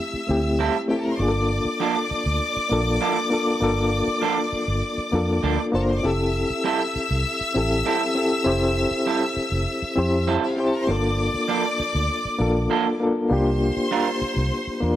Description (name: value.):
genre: soul.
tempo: 99 BPM.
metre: 4/4.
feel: straight.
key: F major.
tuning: A4 = 445 Hz.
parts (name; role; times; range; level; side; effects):
clear studio string section; second line; 0.0-15.0 s; E4 to E6; -27 LUFS; left 2 dB; none.
reed electric piano; accompaniment; 0.0-15.0 s; A3 to C5; -23 LUFS; left 1 dB; fast tremolo, tube saturation.
vintage muted fingered electric bass; bass; 0.1-15.0 s; F1 to F2; -25 LUFS; equal; none.
electric guitar through a small old amp; riff; 0.6-14.1 s; F3 to Bb4; -26 LUFS; right 7 dB; none.
room: light reverb.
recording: none.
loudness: -20 LUFS.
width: side -12 dB against mid.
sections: 0.0-15.0 A section.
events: none.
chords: 0.0 Fmaj9 (rootless); 1.2 Gm9; 6.0 Fmaj9; 10.9 Gm9; 13.3 C9sus4.